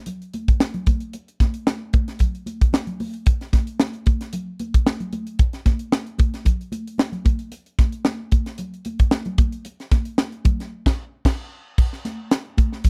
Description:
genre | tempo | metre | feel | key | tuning
pop | 113 BPM | 4/4 | swing 54% on 16ths | none | none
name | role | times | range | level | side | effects
crisp fusion drum kit | drums | 0.1-12.9 s | crash cymbal, hi-hat, kick drum, snare drum | -20 LUFS | equal | none
congas | percussion | 0.1-12.9 s | none | -33 LUFS | equal | none
room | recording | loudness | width
little or no reverb | dry, close 1970s-style studio recording | -22 LUFS | mono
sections
0.0-11.8 A section; 11.8-12.9 B section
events
band accent 10.7-11.8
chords
none

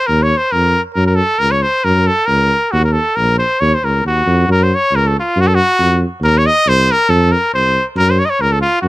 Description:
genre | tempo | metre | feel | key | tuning
balkan folk | 137 BPM | 2/4 | swing 53% on 16ths | unclear | A4 = 440 Hz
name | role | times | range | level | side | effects
bright trumpet | melody | 0.0-8.9 s | F4 to Eb5 | -13 LUFS | equal | none
mellow tuba | bass | 0.1-8.9 s | Bb1 to Gb2 | -15 LUFS | equal | none
room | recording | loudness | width
little or no reverb | close, detailed microphones | -11 LUFS | side -17 dB against mid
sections
0.0-4.5 A section; 4.5-8.9 B section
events
none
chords
0.0 Eb5; 1.0 Gb; 2.7 Ebm; 4.5 Gb5; 6.2 Cm7; 7.1 F5; 8.0 Gb

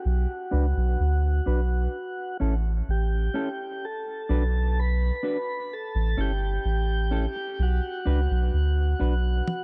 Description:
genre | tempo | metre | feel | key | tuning
dub reggae | 64 BPM | 4/4 | straight | B minor | A4 = 439 Hz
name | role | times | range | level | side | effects
tonewheel organ | melody | 0.0-9.6 s | F#4 to B4 | -34 LUFS | equal | slow rotary speaker, low-pass filter, dub echo
soft dub sub bass | bass | 0.1-9.4 s | G1 to D2 | -25 LUFS | equal | none
mellow electric guitar | accompaniment | 0.5-9.1 s | C#4 to B4 | -37 LUFS | equal | low-pass filter, dub echo
toms | drums | 9.5-9.6 s | none | -32 LUFS | equal | none
room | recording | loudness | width
small room ambience | dark, warm production, nothing above 11.0 kHz | -26 LUFS | mono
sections
0.0-9.6 A section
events
filter sweep 0.0-9.6; drum fill 9.5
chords
0.0 Bm; 1.9 A; 3.8 Bm; 5.7 A; 7.6 Bm

